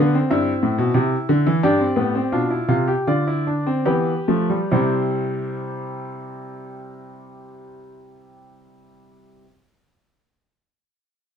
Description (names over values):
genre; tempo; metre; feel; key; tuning
classical, baroque-style 4-part fugue for grand piano; 68-95 BPM; 4/4; straight; C major; A4 = 439 Hz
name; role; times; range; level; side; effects
warm baby grand piano; solo; 0.0-9.5 s; G2 to F5; -19 LUFS; equal; none
room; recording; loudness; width
light reverb; dark, warm production; -18 LUFS; side -8 dB against mid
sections
0.0-4.7 A section; 4.7-8.3 B section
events
slowing down 0.0-4.7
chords
0.3 C/G; 1.6 G7; 4.7 C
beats
0.30 0.95 | 1.62 2.33 3.08 3.88 | 4.74 5.62 6.50 7.38